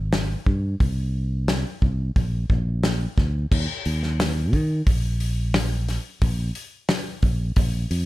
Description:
quiet-loud alternative rock; 89 BPM; 4/4; straight; A4 = 440 Hz
fingered electric bass; bass; 0.0-8.1 s; Ab1 to Eb3; -23 LUFS; equal
loose indie drum kit; drums; 0.1-8.1 s; crash cymbal, hi-hat, kick drum, snare drum; -23 LUFS; equal
little or no reverb; -21 LUFS; side -17 dB against mid
0.0-3.5 A section; 3.5-8.1 B section

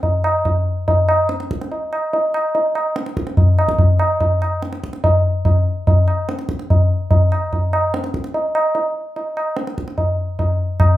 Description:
indian classical; 145 BPM; 4/4; straight
tabla; percussion; 0.0-11.0 s; -16 LUFS; equal
moderate large studio reverb, RT60 0.8 s; band playing live in one room; -16 LUFS; side -15 dB against mid
0.0-5.0 A section; 5.0-11.0 B section

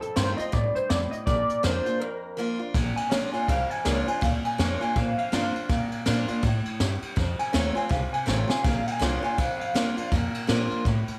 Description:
rockabilly; 163 BPM; 4/4; swing 60% on 8ths; Bb major; A4 = 439 Hz
electric guitar through a small old amp; melody; 0.0-10.7 s; A4 to Ab5; -31 LUFS; equal; analog chorus, tape echo
picked steel-string acoustic guitar; accompaniment; 0.0-11.2 s; F2 to F4; -33 LUFS; equal
upright bass; bass; 0.0-11.1 s; A1 to Bb2; -31 LUFS; equal
jazz brush drum kit; drums; 0.0-11.1 s; hi-hat, kick drum, ride cymbal, snare drum; -31 LUFS; equal
moderate plate reverb, RT60 1.2 s, studio reverb; -26 LUFS; mono
0.0-2.7 A section; 2.7-11.2 B section
break 2.0-2.7; clean electric guitar solo 2.7-11.2; drum fill 8.3-8.6
0.0 F7; 1.3 Bb; 7.2 F7; 8.6 Bb

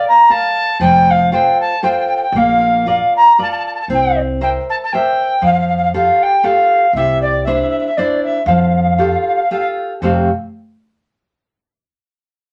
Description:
italian folk, Italian serenade; 118 BPM; 3/4; swing 53% on 8ths; F major; A4 = 441 Hz
reedy alto recorder; melody; 0.0-9.7 s; D5 to Bb5; -15 LUFS; equal
nylon-string guitar; accompaniment; 0.0-10.3 s; F2 to F5; -20 LUFS; equal
upright bass; bass; 0.8-10.3 s; F1 to F2; -25 LUFS; equal
wet studio ambience, RT60 0.5 s; -14 LUFS; mono
0.0-10.0 A section; 10.0-11.6 B section
0.0 Bb; 0.8 F; 2.3 Bb; 3.9 C7; 5.4 Fadd9; 6.9 Cadd9; 8.5 Fadd9

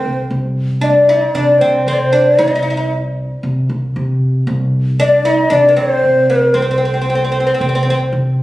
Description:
arabic; 115 BPM; 4/4; straight; A4 = 439 Hz
oud; melody; 0.0-8.0 s; Bb3+50c to E4-50c; -15 LUFS; right 1 dB
breathy ney; second line; 0.0-8.1 s; Bb4+49c to Eb5+48c; -15 LUFS; left 2 dB
upright bass; bass; 0.0-8.4 s; C2 to C3; -17 LUFS; equal
light reverb; recorded on a phone in the room, studio reverb; -12 LUFS; side -16 dB against mid
0.0-8.4 A section

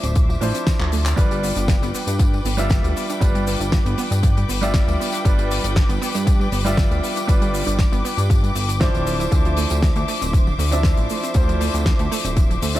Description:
nu-disco, nu disco; 118 BPM; 4/4; straight; G mixolydian; A4 = 441 Hz
clear grand piano; accompaniment; 0.0-12.8 s; F3 to E5; -26 LUFS; right 2 dB; sidechain pumping, dub echo
rich studio string section; sustained chords; 0.0-12.8 s; B4 to D6; -28 LUFS; left 2 dB; sidechain pumping
analog pluck; arpeggios; 0.0-12.8 s; E3 to E4; -30 LUFS; right 3 dB; chorus, sidechain pumping, dub echo
chorused synth bass; bass; 0.0-12.8 s; D1 to G2; -22 LUFS; equal; sidechain pumping
damped 70s drum kit; drums; 0.0-12.8 s; handclaps, hi-hat, shaker, snare drum; -26 LUFS; left 2 dB
tambourine; percussion; 0.0-12.8 s; -39 LUFS; equal
electronic kick drum; drums; 0.2-12.5 s; -18 LUFS; equal
studio reverb; -17 LUFS; side -14 dB against mid
0.0-1.2 A section; 1.2-12.8 B section
drum fill 0.8-1.2; drop 1.2-12.8
0.0 Dm9; 1.2 G7; 9.1 Dm9

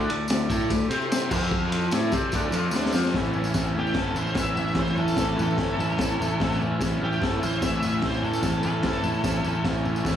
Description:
garage rock duo or trio; 148 BPM; 4/4; straight; A mixolydian; A4 = 443 Hz
combo organ; sustained chords; 0.0-10.2 s; C4 to A5; -37 LUFS; equal
raw garage guitar; riff; 0.0-10.2 s; A2 to C5; -27 LUFS; left 1 dB; overdrive
growling picked electric bass; bass; 0.0-10.2 s; G1 to C3; -29 LUFS; equal; overdrive
crunchy breakbeat drum kit; drums; 0.1-10.2 s; crash cymbal, kick drum, ride cymbal, snare drum, toms; -27 LUFS; equal
tambourine; percussion; 0.3-10.1 s; -39 LUFS; left 2 dB
octave-fuzz lead guitar; melody; 3.8-9.6 s; G4 to E5; -30 LUFS; right 1 dB; distortion, tape echo
light reverb, small room ambience; studio ambience; -22 LUFS; side -9 dB against mid
0.0-3.1 A section; 3.1-10.2 B section
drum fill 2.7-3.1; transistor combo organ fill 9.0-9.6
0.0 D5; 0.9 C5; 1.3 F5; 1.9 D5; 3.1 A

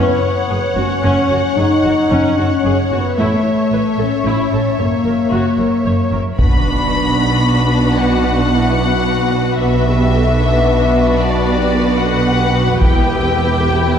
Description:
cinematic, epic orchestral film score; 75 BPM (dotted quarters); 12/8; straight; B minor from 6.4 s; A4 = 438 Hz
warm studio violin section; melody; 0.0-14.0 s; D5 to B5; -21 LUFS; left 3 dB
warm symphonic violin section; second line; 0.0-14.0 s; F#4 to C#5; -22 LUFS; left 2 dB
warm symphonic viola section; accompaniment; 0.0-14.0 s; B3 to C#5; -22 LUFS; right 2 dB
warm French horn section; sustained chords; 0.0-14.0 s; A3 to B4; -18 LUFS; left 3 dB
rich symphonic double bass section; bass; 0.0-14.0 s; E1 to B1; -20 LUFS; right 2 dB
warm symphonic cello section; bass; 0.0-14.0 s; E2 to B2; -20 LUFS; right 2 dB
taiko ensemble; drums; 6.4-7.4, 12.8-13.8 s; -16 LUFS; equal
impact; sound effects; 6.4-9.6 s; -24 LUFS; equal
wet scoring stage reverb, RT60 1.7 s; heard from further back in the room; -12 LUFS; side -8 dB against mid
0.0-6.4 A section; 6.4-14.0 B section
impact 6.4-9.6
0.0 F#5; 3.2 A; 4.8 F#7; 6.4 Bm; 12.8 Em

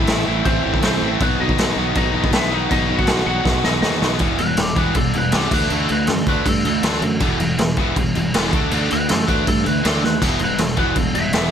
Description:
punk rock; 160 BPM; 4/4; straight; E minor from 4.2 s; A4 = 440 Hz
lightly driven lead guitar; melody; 0.0-11.5 s; B3 to F#5; -24 LUFS; left 3 dB; ping-pong delay
distorted electric guitar; riff; 0.0-11.5 s; A2 to E4; -24 LUFS; left 16 dB; overdrive
distorted electric guitar; riff; 0.0-11.5 s; E2 to D4; -23 LUFS; right 14 dB; distortion
sustaining fretless electric bass; bass; 0.0-11.5 s; E1 to G2; -24 LUFS; equal
raw garage drum kit; drums; 0.1-11.4 s; crash cymbal, kick drum, snare drum, splash cymbal; -20 LUFS; equal
little or no reverb; -16 LUFS; side -8 dB against mid
0.0-4.2 A section; 4.2-11.5 B section
drum fill 3.5-4.2, 10.0; lead electric guitar solo 4.2-11.5
0.0 Am; 1.2 B; 4.2 Em; 5.5 D; 7.2 Em; 8.5 D5; 10.2 Em

